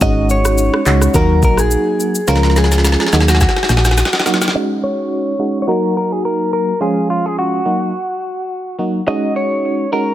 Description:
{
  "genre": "afrobeats",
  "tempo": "106 BPM",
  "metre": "4/4",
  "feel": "swing 55% on 16ths",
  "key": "Eb minor",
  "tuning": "A4 = 440 Hz",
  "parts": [
    { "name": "direct-recorded clean electric guitar", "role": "melody", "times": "0.0-10.1 s", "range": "F4 to Eb5", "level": "-19 LUFS", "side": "left 1 dB", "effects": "low-pass filter, ping-pong delay" },
    { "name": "FM electric piano", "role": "accompaniment", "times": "0.0-10.1 s", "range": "F3 to Gb4", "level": "-17 LUFS", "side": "right 2 dB", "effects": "chorus, tremolo, low-pass filter" },
    { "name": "solid FM bass", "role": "bass", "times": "0.0-4.0 s", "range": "Ab1 to Eb2", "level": "-14 LUFS", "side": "equal", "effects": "none" },
    { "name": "afro-pop drum kit", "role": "drums", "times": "0.0-4.6 s", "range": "handclaps, kick drum, rim click, shaker, snare drum", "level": "-16 LUFS", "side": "equal", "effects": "none" }
  ],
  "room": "digital ambience",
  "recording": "none",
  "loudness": "-13 LUFS",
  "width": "side -13 dB against mid",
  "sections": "0.0-4.5 A section; 4.5-10.1 B section",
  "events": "drum fill 2.3-4.5; filter sweep 4.5-10.1",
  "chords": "0.0 Ab7sus4; 1.1 Ebm; 2.3 Db; 3.1 Ebm; 4.5 Ab7sus4; 5.7 Ebm; 6.8 Db; 7.7 Ebm; 9.1 Ab7sus4"
}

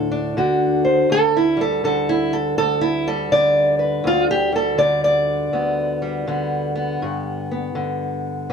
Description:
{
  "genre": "acoustic country blues, solo or duo",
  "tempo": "81 BPM",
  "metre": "4/4",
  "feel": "swing 64% on 8ths",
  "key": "unclear",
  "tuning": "A4 = 440 Hz",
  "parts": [
    { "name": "fingerpicked steel-string acoustic guitar", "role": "solo", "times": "0.0-8.5 s", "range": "D2 to D5", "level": "-17 LUFS", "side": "equal", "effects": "none" }
  ],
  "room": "light reverb",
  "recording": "none",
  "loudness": "-17 LUFS",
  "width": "side -6 dB against mid",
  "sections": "0.0-8.5 A section",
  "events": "steel-string acoustic guitar solo 0.0-8.5",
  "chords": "0.0 D7; 1.1 G"
}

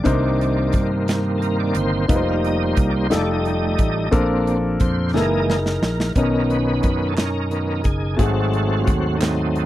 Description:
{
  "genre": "slow gospel",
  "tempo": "59 BPM (dotted quarters)",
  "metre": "6/8",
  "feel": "straight",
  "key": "B major from 6.2 s",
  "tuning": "A4 = 440 Hz",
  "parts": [
    { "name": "warm concert grand piano", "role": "accompaniment", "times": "0.0-9.7 s", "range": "G#2 to C5", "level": "-23 LUFS", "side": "left 2 dB", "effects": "none" },
    { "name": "bright tonewheel organ", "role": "sustained chords", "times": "0.0-9.7 s", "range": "Eb3 to F5", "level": "-23 LUFS", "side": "right 2 dB", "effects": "slow rotary speaker, overdrive, chorus vibrato" },
    { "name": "fingered electric bass", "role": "bass", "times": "0.0-9.7 s", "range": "F1 to G2", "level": "-23 LUFS", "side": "equal", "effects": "none" },
    { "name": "modern studio drum kit", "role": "drums", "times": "0.1-9.7 s", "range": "hi-hat, kick drum, snare drum", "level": "-21 LUFS", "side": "equal", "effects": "none" },
    { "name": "group handclap", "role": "percussion", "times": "7.2-9.5 s", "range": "none", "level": "-32 LUFS", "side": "right 7 dB", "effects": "none" }
  ],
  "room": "little or no reverb",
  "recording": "dry, close 1970s-style studio recording",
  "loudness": "-17 LUFS",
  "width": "side -14 dB against mid",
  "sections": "0.0-6.2 A section; 6.2-9.7 B section",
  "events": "tonewheel organ solo 0.0-6.2, 6.2-9.7; drum fill 5.1-6.2",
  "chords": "0.1 Cm9; 2.1 F7sus4; 3.1 F9; 4.1 Bbmaj9; 5.1 Gb13; 6.2 Bmaj9; 8.2 G#7b9"
}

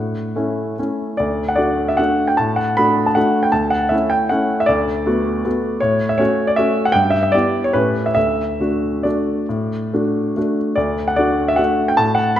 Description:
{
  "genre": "classical, piano waltz",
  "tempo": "132-168 BPM",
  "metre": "3/4",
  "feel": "rubato",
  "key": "D major",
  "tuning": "A4 = 440 Hz",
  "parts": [
    { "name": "warm baby grand piano", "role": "solo", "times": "0.0-12.4 s", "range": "D2 to B5", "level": "-15 LUFS", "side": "equal", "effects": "none" }
  ],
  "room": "moderate scoring stage reverb, RT60 1.9 s",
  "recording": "none",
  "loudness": "-15 LUFS",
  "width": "side -11 dB against mid",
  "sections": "0.0-10.8 A section; 10.8-12.4 A section",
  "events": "none",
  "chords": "0.0 A; 1.2 D; 3.5 A/D; 4.7 Bm7/D; 5.8 F#m/A; 7.0 Em/G; 7.7 A9; 8.2 D"
}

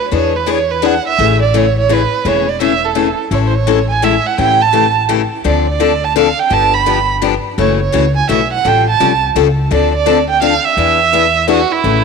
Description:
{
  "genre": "acoustic string swing (jazz manouche)",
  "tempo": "169 BPM",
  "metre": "3/4",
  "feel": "swing 61% on 8ths",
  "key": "A major",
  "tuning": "A4 = 440 Hz",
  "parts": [
    { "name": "warm violin", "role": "melody", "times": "0.0-12.0 s", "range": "E4 to B5", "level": "-14 LUFS", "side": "right 8 dB", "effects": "none" },
    { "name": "picked steel-string acoustic guitar", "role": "accompaniment", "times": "0.1-12.0 s", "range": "C#3 to A4", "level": "-15 LUFS", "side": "left 14 dB", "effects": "none" },
    { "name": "upright bass", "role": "bass", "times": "0.1-12.0 s", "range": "E1 to E2", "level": "-18 LUFS", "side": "equal", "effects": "none" }
  ],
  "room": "moderate plate reverb, RT60 2.4 s",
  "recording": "1960s-style stereo with parts hard left and right",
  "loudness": "-11 LUFS",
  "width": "side -5 dB against mid",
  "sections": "0.0-3.3 A section; 3.3-11.8 B section",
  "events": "none",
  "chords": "0.1 E7; 1.2 Amaj7; 4.4 A7; 5.5 Dm7; 6.5 G7; 7.6 F#m7; 8.6 A7alt; 9.7 Dm7; 10.8 E7"
}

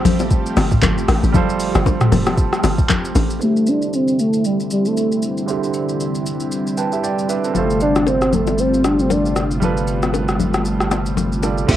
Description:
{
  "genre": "amapiano",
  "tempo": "116 BPM",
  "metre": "4/4",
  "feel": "swing 58% on 16ths",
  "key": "unclear",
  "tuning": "A4 = 440 Hz",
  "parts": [
    { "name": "bright concert grand piano", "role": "accompaniment", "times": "0.0-11.8 s", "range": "D3 to A5", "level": "-25 LUFS", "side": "right 6 dB", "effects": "low-pass filter, cassette tape" },
    { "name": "string machine, cellos", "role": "sustained chords", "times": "0.0-11.8 s", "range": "C3 to G4", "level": "-23 LUFS", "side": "equal", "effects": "ensemble chorus, sidechain pumping, low-pass filter, cassette tape" },
    { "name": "tight log drum bass", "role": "bass", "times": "0.0-3.4, 11.7-11.8 s", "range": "F1 to D2", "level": "-19 LUFS", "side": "equal", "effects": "none" },
    { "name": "smooth R&B drum kit", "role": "drums", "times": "0.1-11.8 s", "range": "crash cymbal, handclaps, hi-hat, kick drum, rim click, shaker, toms", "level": "-20 LUFS", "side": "equal", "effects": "cassette tape" },
    { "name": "bongos and congas", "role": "percussion", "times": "0.1-3.3, 7.5-11.6 s", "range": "none", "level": "-21 LUFS", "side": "left 6 dB", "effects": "none" },
    { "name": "warm velvety synth lead", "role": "melody", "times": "3.4-9.5 s", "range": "G3 to D4", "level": "-17 LUFS", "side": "equal", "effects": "chorus, low-pass filter, analog delay" },
    { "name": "round analog bass", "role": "bass", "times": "7.5-11.6 s", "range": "G1", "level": "-23 LUFS", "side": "equal", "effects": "none" }
  ],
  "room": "digital ambience",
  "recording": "home recording on cassette",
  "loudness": "-15 LUFS",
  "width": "side -12 dB against mid",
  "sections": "0.0-3.4 A section; 3.4-11.7 B section",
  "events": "drop 0.0-3.4; filter sweep 3.4-11.7; grand piano fill 6.5-7.5",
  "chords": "0.0 G9sus4; 3.4 D9sus4; 7.5 G9sus4"
}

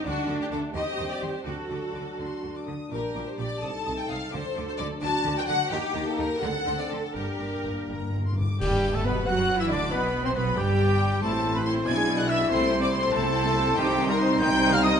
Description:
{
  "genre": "classical, dramatic, fast romantic movement for symphony orchestra",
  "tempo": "80-95 BPM (dotted quarters)",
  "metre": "6/8",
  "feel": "rubato",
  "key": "G minor, G major from 8.6 s",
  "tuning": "A4 = 442 Hz",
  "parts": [
    { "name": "clear symphonic violin section", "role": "second line", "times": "0.0-15.0 s", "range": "F#4 to A5", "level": "-31 LUFS", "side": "left 4 dB", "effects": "none" },
    { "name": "clear symphonic viola section", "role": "accompaniment", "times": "0.0-15.0 s", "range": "Eb3 to Bb4", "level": "-32 LUFS", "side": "right 2 dB", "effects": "none" },
    { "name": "mellow French horn section", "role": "sustained chords", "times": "0.0-15.0 s", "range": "F#3 to F#4", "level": "-32 LUFS", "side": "left 2 dB", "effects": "none" },
    { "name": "clear studio violin section", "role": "melody", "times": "0.1-15.0 s", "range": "G5 to G#6", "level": "-34 LUFS", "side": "left 3 dB", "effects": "none" },
    { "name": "rich symphonic cello section", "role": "bass", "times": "0.1-15.0 s", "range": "G2 to F#3", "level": "-33 LUFS", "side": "right 2 dB", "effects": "none" },
    { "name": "rich symphonic double bass section", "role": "bass", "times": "0.1-15.0 s", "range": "G1 to F#2", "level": "-32 LUFS", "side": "right 3 dB", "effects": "none" },
    { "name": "timpani", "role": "percussion", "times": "0.1-0.7, 7.2-9.2 s", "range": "G2 to D3", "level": "-32 LUFS", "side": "left 1 dB", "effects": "none" },
    { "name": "dark clarinet", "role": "second line", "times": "8.6-15.0 s", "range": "Eb4 to F#5", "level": "-32 LUFS", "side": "left 1 dB", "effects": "none" },
    { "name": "silver concert flute", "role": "second line", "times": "8.6-14.9 s", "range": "G5 to G#6", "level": "-34 LUFS", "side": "equal", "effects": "none" },
    { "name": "warm oboe", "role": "second line", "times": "8.6-15.0 s", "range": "G4 to F#5", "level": "-35 LUFS", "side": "equal", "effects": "none" },
    { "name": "warm trumpet section", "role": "stabs", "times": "8.6-15.0 s", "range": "G4 to G#5", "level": "-30 LUFS", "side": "right 1 dB", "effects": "none" },
    { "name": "clash cymbals and concert bass drum", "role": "percussion", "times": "8.6-9.5 s", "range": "none", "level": "-35 LUFS", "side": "equal", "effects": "none" }
  ],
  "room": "wet recital hall reverb, RT60 1.5 s",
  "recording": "nothing above 10.7 kHz",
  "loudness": "-24 LUFS",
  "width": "side -7 dB against mid",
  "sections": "0.0-8.6 A section; 8.6-15.0 B section",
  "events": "timpani fill 7.2-8.6; band accent 8.6-9.1",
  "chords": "0.1 D; 0.7 Cm; 1.5 D; 2.9 Gm/Bb; 3.6 Adim/C; 4.3 D; 5.7 Eb; 6.4 D7; 7.2 Gm; 8.6 G; 9.3 D/F#; 9.9 G/B; 11.2 Am; 11.9 E7/B; 12.5 Am/C; 13.8 Cm"
}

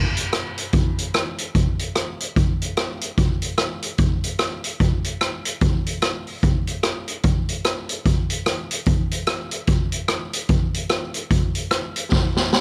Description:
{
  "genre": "ska",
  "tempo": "148 BPM",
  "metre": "4/4",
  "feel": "swing 60% on 8ths",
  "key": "none",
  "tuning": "none",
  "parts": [
    { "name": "street-band drum kit", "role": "drums", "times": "0.2-12.6 s", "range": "hi-hat, kick drum, rim click, snare drum", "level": "-22 LUFS", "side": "equal", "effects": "none" }
  ],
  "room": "light reverb",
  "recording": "none",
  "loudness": "-22 LUFS",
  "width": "mono",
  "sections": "0.0-12.6 A section",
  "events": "drum fill 12.1-12.6",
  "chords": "none"
}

